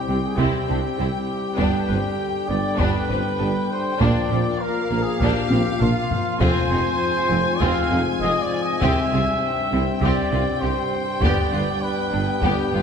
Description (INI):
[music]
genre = cinematic, epic orchestral film score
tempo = 100 BPM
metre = 4/4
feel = straight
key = F dorian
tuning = A4 = 440 Hz
[part]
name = rich symphonic violin section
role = melody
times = 0.0-12.8 s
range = F5 to Ab5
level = -30 LUFS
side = left 2 dB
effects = none
[part]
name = mellow trombone section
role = sustained chords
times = 0.0-12.8 s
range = G2 to G3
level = -31 LUFS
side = right 2 dB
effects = none
[part]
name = warm French horn section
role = sustained chords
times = 0.0-12.8 s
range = G3 to F4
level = -30 LUFS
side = left 7 dB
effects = none
[part]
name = mellow trumpet section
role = stabs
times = 0.0-12.8 s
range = F4 to F5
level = -25 LUFS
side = left 1 dB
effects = none
[part]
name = timpani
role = percussion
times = 0.0, 6.4-9.7 s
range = F2 to C3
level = -34 LUFS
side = left 2 dB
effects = none
[part]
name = rich symphonic violin section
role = second line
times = 0.1-12.8 s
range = Bb3 to G4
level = -30 LUFS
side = left 2 dB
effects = none
[part]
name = rich symphonic viola section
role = accompaniment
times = 0.1-12.8 s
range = Bb3 to B4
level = -30 LUFS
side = right 2 dB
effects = none
[part]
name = mellow tuba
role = bass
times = 0.1-12.8 s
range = F1 to C2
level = -29 LUFS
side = right 3 dB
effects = none
[part]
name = rich studio double bass section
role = bass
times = 0.1-12.8 s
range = F1 to C2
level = -29 LUFS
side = right 3 dB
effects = none
[part]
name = rich symphonic cello section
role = bass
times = 0.1-12.8 s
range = F2 to C3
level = -29 LUFS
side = right 2 dB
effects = none
[part]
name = taiko ensemble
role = drums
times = 0.4-12.8 s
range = none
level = -26 LUFS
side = left 1 dB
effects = none
[sound]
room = wet concert hall reverb, RT60 2.3 s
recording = none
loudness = -19 LUFS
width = side -7 dB against mid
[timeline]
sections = 0.0-12.8 A section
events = drum fill 5.5-6.4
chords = 0.0 C; 1.6 G; 4.0 Bb; 6.4 Fm; 8.8 C; 11.2 G